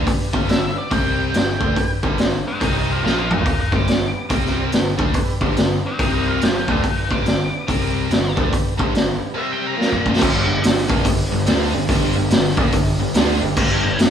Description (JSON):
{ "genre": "blues rock power trio and southern rock", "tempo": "142 BPM", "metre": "4/4", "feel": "swing 63% on 8ths", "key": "G mixolydian", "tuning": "A4 = 443 Hz", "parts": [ { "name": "tonewheel organ", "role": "sustained chords", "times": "0.0-14.1 s", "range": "F3 to D5", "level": "-30 LUFS", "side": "right 5 dB", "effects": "chorus vibrato, slow rotary speaker" }, { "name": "biting overdriven guitar", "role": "riff", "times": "0.0-14.1 s", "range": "G2 to D4", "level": "-23 LUFS", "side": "left 1 dB", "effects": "slapback echo" }, { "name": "fuzz picked electric bass", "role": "bass", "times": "0.0-14.1 s", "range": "G1 to D2", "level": "-24 LUFS", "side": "left 1 dB", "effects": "overdrive" }, { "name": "raw garage drum kit", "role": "drums", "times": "0.1-14.1 s", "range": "crash cymbal, hi-hat, kick drum, snare drum, toms", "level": "-19 LUFS", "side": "equal", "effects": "none" }, { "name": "octave-fuzz lead guitar", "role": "melody", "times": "0.5-10.1 s", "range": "Bb4 to D6", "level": "-26 LUFS", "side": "left 1 dB", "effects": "distortion, slapback echo" } ], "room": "light reverb", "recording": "small room ambience", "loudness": "-16 LUFS", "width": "side -8 dB against mid", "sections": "0.0-10.2 A section; 10.2-14.1 B section", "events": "drum fill 3.0-3.5, 9.8-10.2", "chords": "0.0 G; 0.9 C5; 1.3 G; 2.6 C5; 3.0 Bb5; 3.7 G; 4.3 C5; 4.7 G; 6.0 C5; 6.4 G; 7.7 C5; 8.1 G; 9.4 C5; 9.8 Bb5; 10.2 G", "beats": "| 0.07 0.49 0.92 1.34 | 1.76 2.19 2.61 3.03 | 3.46 3.88 4.30 4.72 | 5.15 5.57 5.99 6.42 | 6.84 7.26 7.68 8.10 | 8.53 8.95 9.37 9.79 | 10.21 10.63 11.05 11.47 | 11.89 12.31 12.73 13.15 | 13.57 13.99" }